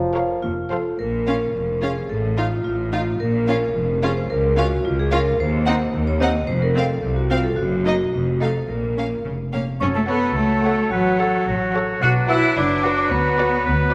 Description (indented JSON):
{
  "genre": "cinematic, playful, whimsical film cue",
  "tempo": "109 BPM",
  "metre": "2/4",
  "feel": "straight",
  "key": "Bb minor, F# minor from 9.8 s",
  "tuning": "A4 = 438 Hz",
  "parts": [
    { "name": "mellow bassoon", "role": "accompaniment", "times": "0.0-0.4, 9.8-13.9 s", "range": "F3 to F#3", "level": "-31 LUFS", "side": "equal", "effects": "none" },
    { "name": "mellow French horn section", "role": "sustained chords", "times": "0.0-0.4, 10.1-13.5 s", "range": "F3 to C#5", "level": "-35 LUFS", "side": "equal", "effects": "none" },
    { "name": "clear studio cello section", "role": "bass", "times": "0.0-13.9 s", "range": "C2 to F#4", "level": "-27 LUFS", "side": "equal", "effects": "none" },
    { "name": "rich studio double bass section", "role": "bass", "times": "0.0-13.9 s", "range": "F1 to F#2", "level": "-27 LUFS", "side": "equal", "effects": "none" },
    { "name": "warm studio violin section", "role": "melody", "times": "0.1-13.6 s", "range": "D5 to Gb5", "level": "-33 LUFS", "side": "equal", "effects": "none" },
    { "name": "rich studio violin section", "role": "second line", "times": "0.1-13.6 s", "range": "C4 to Db5", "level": "-34 LUFS", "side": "equal", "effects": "none" },
    { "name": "rich studio viola section", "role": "accompaniment", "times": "0.1-13.6 s", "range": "A3 to Bb4", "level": "-32 LUFS", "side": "equal", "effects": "none" },
    { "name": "vibraphone with medium hard mallets", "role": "melody", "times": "0.4-13.9 s", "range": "F4 to F#5", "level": "-27 LUFS", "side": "equal", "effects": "none" },
    { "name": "bright clarinet", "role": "second line", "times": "9.8-13.9 s", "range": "B4 to C#5", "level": "-32 LUFS", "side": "equal", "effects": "none" },
    { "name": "clear oboe", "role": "second line", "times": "9.8-13.9 s", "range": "D4 to B4", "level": "-28 LUFS", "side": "equal", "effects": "none" },
    { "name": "mellow hollow silver concert flute", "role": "second line", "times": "9.8-13.9 s", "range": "F#5 to F#6", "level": "-27 LUFS", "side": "equal", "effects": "none" }
  ],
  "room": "moderate scoring stage reverb, RT60 1.9 s",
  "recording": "none",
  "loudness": "-20 LUFS",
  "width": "mono",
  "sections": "1.0-9.8 A section; 9.8-13.9 B section",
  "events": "none",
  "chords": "0.4 F; 1.0 Bbm; 2.1 F7/A; 3.2 Bbm; 4.3 Db6; 5.4 Cm/Eb; 6.5 F5; 7.6 Ebm/Gb; 8.1 F(b9); 8.7 Bb5; 9.8 F#m; 10.9 F#m/A; 12.0 Bm; 13.1 Bm/D"
}